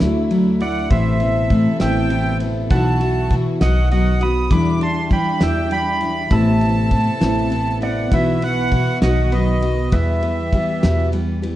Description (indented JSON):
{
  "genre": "acoustic folk duo or small band",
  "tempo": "67 BPM (dotted quarters)",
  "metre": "6/8",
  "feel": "straight",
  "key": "E minor",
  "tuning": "A4 = 441 Hz",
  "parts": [
    { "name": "picked steel-string acoustic guitar", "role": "accompaniment", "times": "0.0-11.6 s", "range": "E2 to G4", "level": "-21 LUFS", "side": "left 1 dB", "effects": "none" },
    { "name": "warm chamber string section", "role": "sustained chords", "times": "0.0-11.6 s", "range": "B2 to A4", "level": "-29 LUFS", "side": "right 1 dB", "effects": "none" },
    { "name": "upright bass", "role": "bass", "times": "0.0-11.6 s", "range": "A1 to E3", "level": "-20 LUFS", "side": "equal", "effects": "none" },
    { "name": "cloth-damped thuddy drum kit", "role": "drums", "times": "0.0-11.6 s", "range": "kick drum, ride cymbal, snare drum", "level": "-20 LUFS", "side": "equal", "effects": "none" },
    { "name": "accordion", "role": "melody", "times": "0.6-11.1 s", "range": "D#5 to D#6", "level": "-24 LUFS", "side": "equal", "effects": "light tremolo tuning" },
    { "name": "pedal steel guitar", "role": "second line", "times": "0.6-11.1 s", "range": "B4 to B5", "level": "-28 LUFS", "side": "right 2 dB", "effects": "none" }
  ],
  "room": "light reverb",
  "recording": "dark, warm production, nothing above 10.5 kHz",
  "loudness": "-15 LUFS",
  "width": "side -14 dB against mid",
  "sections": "0.0-11.6 A section",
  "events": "none",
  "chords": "0.0 Dadd9; 0.9 Amadd9; 2.7 Bsus4; 3.6 B; 4.5 Em7; 6.3 Amadd9; 8.1 Bsus4; 9.0 B; 9.9 Em"
}